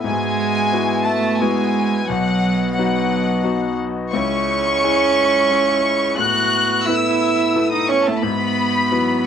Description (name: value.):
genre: neoclassical piano and strings.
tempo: 88 BPM.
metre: 3/4.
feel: rubato.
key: unclear.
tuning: A4 = 441 Hz.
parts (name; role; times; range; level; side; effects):
warm chamber violin section; melody; 0.0-9.2 s; F#5 to F#6; -21 LUFS; left 4 dB; cassette tape, plate reverb.
clear concert grand piano; accompaniment; 0.0-9.3 s; B1 to F#4; -23 LUFS; left 8 dB; plate reverb.
pedal harmonium; sustained chords; 0.0-9.3 s; G#3 to E5; -26 LUFS; equal; plate reverb.
warm cello; second line; 0.1-9.3 s; F#3 to F#4; -19 LUFS; right 6 dB; plate reverb.
room: wet booth ambience, RT60 0.2 s.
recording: home recording on cassette.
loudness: -16 LUFS.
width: side -8 dB against mid.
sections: 0.0-9.3 A section.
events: none.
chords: 0.0 Eadd9/G#; 2.1 B; 4.1 C#m; 6.2 Asus2; 8.2 Eadd9/G#.